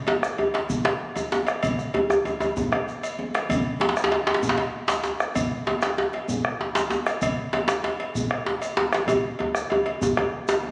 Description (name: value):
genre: west african traditional, West African drum ensemble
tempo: 129 BPM (dotted quarters)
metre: 12/8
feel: straight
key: none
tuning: none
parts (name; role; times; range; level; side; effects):
- cowbell; percussion; 0.1-10.6 s; none; -33 LUFS; equal; none
- djembe; percussion; 0.1-10.7 s; none; -35 LUFS; equal; none
- djembe; percussion; 0.1-10.6 s; none; -27 LUFS; equal; none
- bombo; percussion; 0.2-10.7 s; none; -32 LUFS; equal; none
- shekere; percussion; 0.2-10.6 s; none; -40 LUFS; equal; none
room: wet scoring stage reverb, RT60 1.6 s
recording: recorded on a phone in the room, club reverb, compression, nothing above 11.0 kHz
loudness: -25 LUFS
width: mono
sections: 0.0-10.7 A section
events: drum fill 9.1-10.7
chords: none